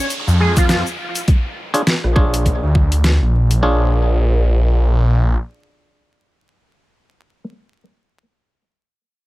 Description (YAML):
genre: glitch hop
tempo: 102 BPM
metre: 4/4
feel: swing 58% on 16ths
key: unclear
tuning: A4 = 441 Hz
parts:
  - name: sync lead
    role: melody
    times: 0.0-0.8 s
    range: F4 to Ab4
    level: -22 LUFS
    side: right 1 dB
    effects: wide subtle chorus, digital delay
  - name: downlifter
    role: sound effects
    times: 0.0-3.6 s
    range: none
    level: -31 LUFS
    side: right 1 dB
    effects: none
  - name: dubstep drum kit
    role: drums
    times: 0.1-3.6 s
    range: hi-hat, rim click, snare drum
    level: -19 LUFS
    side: equal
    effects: overdrive, small room ambience
  - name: egg shaker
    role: percussion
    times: 0.1-1.3 s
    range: none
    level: -29 LUFS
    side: left 3 dB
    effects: none
  - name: phased detuned saw bass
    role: bass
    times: 0.3-5.4 s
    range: Bb1 to F2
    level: -14 LUFS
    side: equal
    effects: phaser, overdrive
  - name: electronic kick drum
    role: drums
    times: 0.6-2.9 s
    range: none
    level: -15 LUFS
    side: equal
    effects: overdrive, small room ambience
  - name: clav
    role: stabs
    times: 1.7-7.4 s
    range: D4 to C#5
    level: -22 LUFS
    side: equal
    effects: vintage 12-bit sampler grit, sidechain pumping, digital delay
room: little or no reverb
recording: vinyl crackle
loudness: -14 LUFS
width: side -18 dB against mid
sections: 0.0-3.6 A section; 3.6-6.0 B section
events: filter sweep on detuned saw bass 0.0-3.6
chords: 0.0 Bb7#9